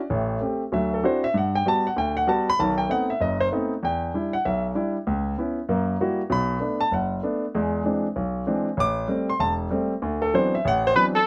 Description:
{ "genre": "jazz", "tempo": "193 BPM", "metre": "4/4", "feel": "swing 63% on 8ths", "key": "G major", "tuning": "A4 = 444 Hz", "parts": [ { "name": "warm grand piano", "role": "accompaniment", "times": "0.0-11.2 s", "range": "E1 to D6", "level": "-24 LUFS", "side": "equal", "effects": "none" }, { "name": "dark trumpet", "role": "melody", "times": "11.0-11.3 s", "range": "A4 to B4", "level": "-20 LUFS", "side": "equal", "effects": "none" } ], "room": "light reverb", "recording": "close, detailed microphones", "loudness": "-24 LUFS", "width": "mono", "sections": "0.0-1.3 A section; 1.3-11.3 A section", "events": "none", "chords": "0.1 Am7; 0.7 D9; 1.3 Gmaj7; 2.6 B7b9; 3.8 Em7; 5.1 C#m7; 5.7 F#7b9; 6.3 Bm7; 7.5 E7b13; 8.8 Am7; 10.0 D13", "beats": "| 0.10 0.41 0.72 1.03 | 1.34 1.65 1.96 2.27 | 2.58 2.89 3.20 3.51 | 3.82 4.13 4.44 4.75 | 5.06 5.37 5.68 5.99 | 6.30 6.61 6.92 7.23 | 7.54 7.85 8.16 8.47 | 8.78 9.09 9.40 9.71 | 10.03 10.34 10.65 10.96" }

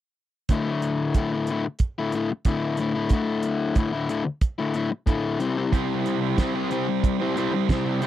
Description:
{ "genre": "classic rock", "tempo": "92 BPM", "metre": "4/4", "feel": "straight", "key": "unclear", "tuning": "A4 = 440 Hz", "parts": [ { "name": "overdriven semi-hollow guitar", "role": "riff", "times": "0.5-8.1 s", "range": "D2 to C5", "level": "-24 LUFS", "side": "left 4 dB", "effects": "none" }, { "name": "cloth-damped thuddy drum kit", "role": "drums", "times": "0.5-8.1 s", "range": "hi-hat, kick drum, snare drum", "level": "-22 LUFS", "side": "right 2 dB", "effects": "none" }, { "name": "sludgy distorted guitar", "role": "riff", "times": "5.7-8.1 s", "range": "C3 to C5", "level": "-27 LUFS", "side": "right 12 dB", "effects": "overdrive" } ], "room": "little or no reverb", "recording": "dry, close 1970s-style studio recording", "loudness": "-22 LUFS", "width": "side -12 dB against mid", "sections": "0.5-8.1 A section", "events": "none", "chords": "0.5 Dsus2; 5.4 C", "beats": "| 0.48 1.14 1.79 2.45 | 3.11 3.76 4.42 5.08 | 5.73 6.39 7.04 7.70" }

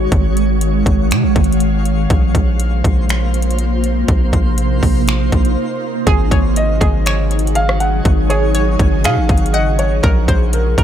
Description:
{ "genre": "hip hop, atmospheric cloud-rap", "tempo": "121 BPM", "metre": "4/4", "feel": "half-time", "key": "unclear", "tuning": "A4 = 442 Hz", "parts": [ { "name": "ethereal airy pad", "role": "sustained chords", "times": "0.0-10.8 s", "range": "C3 to F5", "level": "-19 LUFS", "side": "right 1 dB", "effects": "ensemble chorus, built-in reverb, phaser, sidechain pumping" }, { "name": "long sustained 808-style bass", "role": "bass", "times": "0.0-10.8 s", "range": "Ab1 to C3", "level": "-16 LUFS", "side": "equal", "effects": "none" }, { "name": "twinkling granular texture", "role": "texture", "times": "0.0-10.8 s", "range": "Ab3 to Db5", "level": "-28 LUFS", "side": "equal", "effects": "built-in reverb" }, { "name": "trap drum kit", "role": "drums", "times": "0.1-10.8 s", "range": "finger snaps, hi-hat, kick drum, rim click", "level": "-16 LUFS", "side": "equal", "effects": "none" }, { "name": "hollow square pluck", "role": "arpeggios", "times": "6.1-10.8 s", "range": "Ab4 to Gb5", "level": "-24 LUFS", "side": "right 1 dB", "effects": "chorus, ping-pong delay" }, { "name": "felt-muted upright piano", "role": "melody", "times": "6.6-10.8 s", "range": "Bb4 to Gb5", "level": "-21 LUFS", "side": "equal", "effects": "ping-pong delay" } ], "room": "little or no reverb", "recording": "none", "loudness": "-12 LUFS", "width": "side -10 dB against mid", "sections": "0.0-6.1 A section; 6.1-10.8 B section", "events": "break 5.6-6.1", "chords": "0.0 Ab7sus4; 2.1 Bbsus2; 6.1 Ab7sus4; 10.0 Bbsus2", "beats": "| 0.12 0.61 1.11 1.61 | 2.10 2.60 3.09 3.59 | 4.09 4.58 5.08 5.57 | 6.07 6.57 7.06 7.56 | 8.05 8.55 9.04 9.54 | 10.04 10.53" }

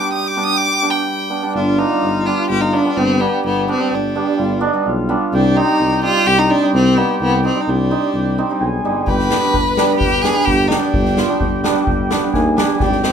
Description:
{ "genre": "klezmer", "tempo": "128 BPM", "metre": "4/4", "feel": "straight", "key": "G phrygian dominant", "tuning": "A4 = 436 Hz", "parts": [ { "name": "clear violin", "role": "melody", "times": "0.0-13.1 s", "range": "B3 to Eb6", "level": "-18 LUFS", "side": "equal", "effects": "none" }, { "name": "mellow accordion", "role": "second line", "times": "0.0-13.1 s", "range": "Eb4 to B4", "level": "-23 LUFS", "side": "equal", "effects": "none" }, { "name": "hammered dulcimer", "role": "accompaniment", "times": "0.0-13.1 s", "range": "G3 to F4", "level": "-20 LUFS", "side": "right 4 dB", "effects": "none" }, { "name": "mellow tuba", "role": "bass", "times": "1.6-13.1 s", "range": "G1 to Eb2", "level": "-20 LUFS", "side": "left 1 dB", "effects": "none" }, { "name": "street-band drum kit", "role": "drums", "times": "9.1-13.1 s", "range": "kick drum, snare drum", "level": "-20 LUFS", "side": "left 1 dB", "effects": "none" } ], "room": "moderate small room reverb, RT60 0.5 s", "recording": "minimal, uncompressed stereo recording, faint mains hum", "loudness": "-14 LUFS", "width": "side -7 dB against mid", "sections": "0.0-1.6 A section; 1.6-13.1 B section", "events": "break 0.0-1.6; violin solo 0.0-1.6", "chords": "0.0 G; 5.3 Cm; 9.1 G", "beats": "0.13 0.61 1.08 | 1.55 2.03 2.50 2.97 | 3.44 3.91 4.38 4.85 | 5.32 5.79 6.26 6.73 | 7.20 7.67 8.13 8.60 | 9.07 9.54 10.00 10.47 | 10.94 11.40 11.87 12.34 | 12.80" }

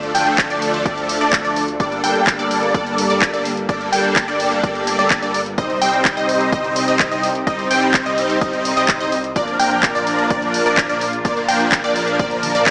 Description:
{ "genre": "EDM, festival progressive house", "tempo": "127 BPM", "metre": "4/4", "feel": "straight", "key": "G minor", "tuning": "A4 = 440 Hz", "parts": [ { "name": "lush unison pad", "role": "sustained chords", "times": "0.0-12.7 s", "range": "C3 to A4", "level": "-25 LUFS", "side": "equal", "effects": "chorus, phaser, sidechain pumping" }, { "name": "wide unison pluck", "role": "arpeggios", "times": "0.0-12.7 s", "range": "D5 to G5", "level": "-22 LUFS", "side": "equal", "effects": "sidechain pumping, tape echo" }, { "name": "supersaw chords", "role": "riff", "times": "0.0-12.7 s", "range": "F3 to G5", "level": "-18 LUFS", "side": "equal", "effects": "ensemble chorus, sidechain pumping, tape echo" }, { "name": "wide detuned saw bass", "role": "bass", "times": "0.0-12.7 s", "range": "G1 to D2", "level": "-30 LUFS", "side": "equal", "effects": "chorus, sidechain pumping" }, { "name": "house drum kit", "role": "drums", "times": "0.0-12.7 s", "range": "handclaps, hi-hat, toms", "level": "-20 LUFS", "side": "equal", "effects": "none" }, { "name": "electronic kick drum", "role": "drums", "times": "0.4-12.7 s", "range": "none", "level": "-22 LUFS", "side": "equal", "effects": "none" } ], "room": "moderate recital hall reverb, RT60 1.4 s, digital ambience", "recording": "small speaker sound", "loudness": "-15 LUFS", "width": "side -30 dB against mid", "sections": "0.0-12.7 A section", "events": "drum fill 12.4", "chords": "0.0 Dm; 1.8 Gmadd9; 5.6 Cm; 9.4 Bb", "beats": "0.38 0.85 1.33 | 1.80 2.27 2.75 3.22 | 3.69 4.16 4.63 5.11 | 5.58 6.05 6.52 7.00 | 7.47 7.94 8.41 8.89 | 9.36 9.83 10.30 10.78 | 11.25 11.72 12.19 12.67" }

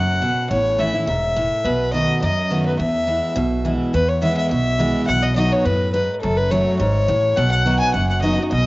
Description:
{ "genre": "bluegrass", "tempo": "210 BPM", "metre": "4/4", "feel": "swing 54% on 8ths", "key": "E major", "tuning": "A4 = 439 Hz", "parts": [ { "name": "dark fiddle", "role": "melody", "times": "0.0-8.7 s", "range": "A4 to G#5", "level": "-20 LUFS", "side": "left 1 dB", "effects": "none" }, { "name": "picked steel-string acoustic guitar", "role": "accompaniment", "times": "0.0-8.7 s", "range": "E2 to F#4", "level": "-20 LUFS", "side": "equal", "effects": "cassette tape" }, { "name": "upright bass", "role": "bass", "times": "0.0-8.7 s", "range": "E1 to F#2", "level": "-23 LUFS", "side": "equal", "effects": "none" } ], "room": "moderate spring reverb, RT60 2.5 s", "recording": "home recording on cassette, nothing above 7.6 kHz", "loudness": "-16 LUFS", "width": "side -20 dB against mid", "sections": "0.0-3.9 A section; 3.9-8.7 A section", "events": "none", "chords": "0.0 B5; 0.5 A; 1.6 B7; 2.8 E; 5.1 B; 6.2 F#m; 7.4 B", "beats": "0.21 | 0.50 0.79 1.07 1.36 | 1.65 1.94 2.22 2.51 | 2.79 3.08 3.37 3.65 | 3.94 4.23 4.51 4.80 | 5.08 5.37 5.66 5.94 | 6.23 6.52 6.80 7.09 | 7.38 7.66 7.95 8.23 | 8.52" }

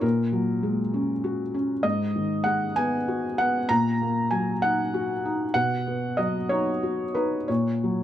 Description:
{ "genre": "neoclassical minimalist piano", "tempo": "65 BPM (dotted quarters)", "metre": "6/8", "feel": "rubato", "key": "G# minor", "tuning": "A4 = 440 Hz", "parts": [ { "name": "felt-muted upright piano", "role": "solo", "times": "0.0-8.0 s", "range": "G#2 to A#5", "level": "-23 LUFS", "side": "equal", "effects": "none" } ], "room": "light reverb", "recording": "none", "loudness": "-23 LUFS", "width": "side -11 dB against mid", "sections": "0.0-8.0 A section", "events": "none", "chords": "0.0 F#add9/A#; 1.8 G#m7; 3.7 D#m/A#; 5.6 B; 7.5 F#/A#", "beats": "| 0.03 0.94 | 1.84 2.77 | 3.69 4.63 | 5.55 6.50 | 7.49" }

